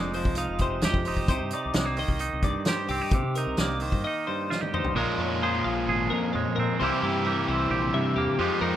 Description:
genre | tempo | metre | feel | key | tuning
math rock and midwest emo | 131 BPM | 4/4 | straight | unclear | A4 = 440 Hz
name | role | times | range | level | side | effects
twangy electric guitar | accompaniment | 0.0-8.8 s | F2 to Ab4 | -28 LUFS | right 4 dB | none
twelve-string electric guitar | arpeggios | 0.0-8.8 s | G4 to F5 | -32 LUFS | left 7 dB | slapback echo
fingered electric bass | bass | 0.0-8.7 s | F1 to C3 | -32 LUFS | equal | none
loose indie drum kit | drums | 0.1-5.0 s | hi-hat, kick drum, snare drum, toms | -27 LUFS | equal | none
crunchy overdriven guitar | riff | 5.0-8.8 s | Bb2 to Bb4 | -27 LUFS | left 1 dB | none
room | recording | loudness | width
little or no reverb | rough home demo mix | -24 LUFS | side -11 dB against mid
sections
0.0-5.0 A section; 5.0-8.8 B section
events
break 4.1-5.0; drum fill 4.5-5.0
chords
0.0 Fm9; 1.3 Cm7; 5.0 Bbm11; 6.8 C7

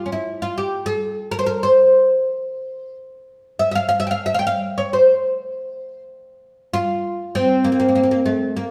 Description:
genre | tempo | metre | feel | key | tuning
turkish | 199 BPM (eighths) | 7/8 | straight | C makam hicaz | A4 = 439 Hz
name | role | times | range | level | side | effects
oud | solo | 0.0-8.7 s | A3-40c to G5 | -19 LUFS | equal | none
room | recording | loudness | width
wet stone room reverb, RT60 1.3 s | band playing live in one room | -19 LUFS | mono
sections
0.0-8.6 A section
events
none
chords
none

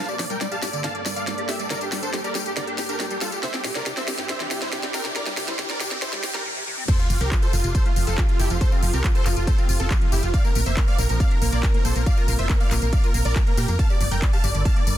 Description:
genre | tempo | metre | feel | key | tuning
uplifting trance | 139 BPM | 4/4 | straight | F major | A4 = 439 Hz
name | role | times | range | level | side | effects
supersaw chords | melody | 0.0-15.0 s | E4 to A5 | -28 LUFS | right 1 dB | sidechain pumping, low-pass filter, ping-pong delay
lush unison pad | sustained chords | 0.0-15.0 s | G2 to Bb4 | -36 LUFS | right 1 dB | chorus, sidechain pumping
riser and sub drop | sound effects | 2.9-8.6 s | none | -34 LUFS | equal | none
liquid acid bass | arpeggios | 0.1-15.0 s | G2 to G4 | -33 LUFS | left 2 dB | ensemble chorus, sidechain pumping, ping-pong delay
techno drum kit | drums | 0.1-15.0 s | crash cymbal, handclaps, hi-hat, snare drum, tambourine | -29 LUFS | left 1 dB | high-pass filter on snare, high-pass filter on hats, high-pass filter on perc, high-pass filter on cymbals
plucky unison lead | second line | 6.9-15.0 s | F4 to A5 | -35 LUFS | left 1 dB | analog chorus, sidechain pumping, ping-pong delay
electronic kick drum | drums | 6.9-14.7 s | none | -21 LUFS | equal | none
solid FM bass | bass | 7.1-15.0 s | F1 to Bb2 | -23 LUFS | equal | sidechain pumping
room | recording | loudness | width
little or no reverb | dense, heavily limited modern master, high-pass filter | -20 LUFS | side -12 dB against mid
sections
0.0-6.9 A section; 6.9-15.0 B section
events
build-up 0.0-6.9; drum fill 0.0-6.5; filter sweep 0.0-6.9; riser 2.9-6.9; drop 6.9-15.0; impact 6.9-8.6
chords
0.0 Gmadd9; 3.4 Cadd9; 6.9 Fadd9; 10.3 Bbsus2; 13.8 Gmadd9

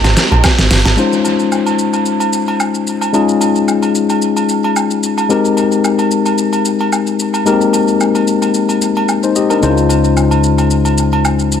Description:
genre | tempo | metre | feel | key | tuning
amapiano | 111 BPM | 4/4 | swing 55% on 16ths | Db lydian | A4 = 440 Hz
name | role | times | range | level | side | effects
warm studio string section | sustained chords | 0.0-0.9 s | Ab3 to Bb4 | -24 LUFS | right 1 dB | sidechain pumping
deep log drum bass | bass | 0.0-1.0 s | G1 to Bb1 | -12 LUFS | right 1 dB | none
smooth R&B drum kit | drums | 0.0-11.6 s | hi-hat, kick drum, shaker, snare drum | -18 LUFS | equal | dub echo
agogo bells and woodblock | percussion | 0.0-11.4 s | none | -19 LUFS | right 6 dB | dub echo
tine electric piano | accompaniment | 1.0-11.6 s | Ab3 to Eb5 | -13 LUFS | left 6 dB | none
fingered electric bass | bass | 9.6-11.6 s | Db2 | -14 LUFS | right 1 dB | none
room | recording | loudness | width
light reverb | echo-heavy mix | -11 LUFS | side -8 dB against mid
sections
1.0-11.6 A section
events
drum fill 0.0-1.0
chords
0.0 Abmaj9; 1.0 Dbmaj9; 5.3 Abmaj9; 9.6 Dbmaj9

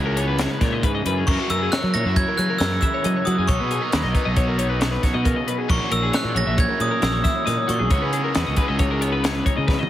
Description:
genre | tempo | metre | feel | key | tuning
math rock and midwest emo | 136 BPM | 5/4 | straight | unclear | A4 = 439 Hz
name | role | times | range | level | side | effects
electric guitar through a small old amp | accompaniment | 0.0-9.9 s | F#2 to A#4 | -32 LUFS | right 6 dB | none
twelve-string electric guitar | arpeggios | 0.0-9.9 s | F#4 to E5 | -27 LUFS | left 6 dB | plate reverb, analog delay
biting overdriven guitar | riff | 0.0-9.9 s | F#2 to G#4 | -29 LUFS | left 1 dB | none
fuzz fingered electric bass | bass | 0.0-9.8 s | A#1 to F#3 | -24 LUFS | equal | overdrive
compact cocktail drum kit | drums | 0.2-9.9 s | crash cymbal, hi-hat, kick drum, snare drum, toms | -23 LUFS | equal | none
glockenspiel with brass mallets | melody | 1.3-9.6 s | C#6 to A#6 | -26 LUFS | right 2 dB | none
room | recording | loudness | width
light reverb | heavily compressed radio sound | -18 LUFS | side -12 dB against mid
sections
0.0-9.9 A section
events
drum fill 9.7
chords
0.0 C#m11; 1.3 F#9; 3.5 Bmaj9; 5.7 F#9/A#; 7.9 C#m11

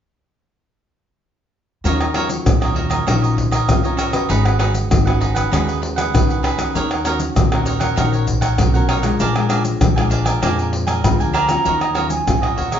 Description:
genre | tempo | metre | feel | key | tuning
samba and choro | 98 BPM | 4/4 | straight | Eb minor | A4 = 439 Hz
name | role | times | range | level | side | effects
cavaquinho | accompaniment | 1.8-12.8 s | D4 to Ab5 | -23 LUFS | right 4 dB | none
upright bass | bass | 1.8-12.8 s | Ab1 to F2 | -21 LUFS | equal | none
nylon-string guitar | accompaniment | 1.9-12.8 s | Bb2 to Cb5 | -23 LUFS | left 2 dB | none
maracas, surdo, pandeiro and tamborim | percussion | 1.9-12.8 s | none | -19 LUFS | equal | none
mellow baroque flute | melody | 11.0-12.8 s | Gb5 to Cb6 | -20 LUFS | right 3 dB | none
room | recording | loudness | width
wet large studio reverb, RT60 0.9 s | band playing live in one room, nothing above 7.6 kHz | -15 LUFS | side -9 dB against mid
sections
1.9-11.7 A section; 11.7-12.8 B section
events
none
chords
1.9 Ebm9; 4.3 Abm11; 6.8 Ebm7; 9.2 Bb7; 11.7 Ebm9

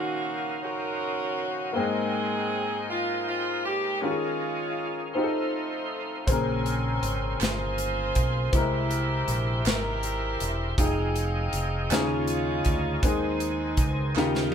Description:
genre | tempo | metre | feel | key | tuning
slow gospel | 53 BPM (dotted quarters) | 6/8 | straight | Ab major | A4 = 441 Hz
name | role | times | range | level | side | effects
bright saxophone section | melody | 0.0-14.5 s | Ab3 to C5 | -30 LUFS | right 1 dB | none
clear baby grand piano | accompaniment | 0.0-14.5 s | Ab2 to G5 | -29 LUFS | left 2 dB | none
overdriven tonewheel organ | sustained chords | 0.0-14.5 s | Gb4 to C6 | -36 LUFS | right 1 dB | slow rotary speaker, chorus vibrato
fingered electric bass | bass | 6.3-14.5 s | E1 to Eb2 | -30 LUFS | equal | none
modern studio drum kit | drums | 6.3-14.5 s | hi-hat, kick drum, snare drum, toms | -28 LUFS | equal | none
group handclap | percussion | 7.4-14.5 s | none | -34 LUFS | right 8 dB | none
room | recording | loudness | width
moderate studio reverb, RT60 0.5 s | band playing live in one room | -24 LUFS | side -8 dB against mid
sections
0.0-14.5 A section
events
drum fill 14.2-14.5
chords
0.0 Ebm9; 1.7 Abmaj9; 4.0 Eb9sus4; 5.1 F7; 6.3 Bbm9; 8.5 C7b13; 10.8 Fm9; 11.9 Eb9sus4; 13.0 Ab/Eb

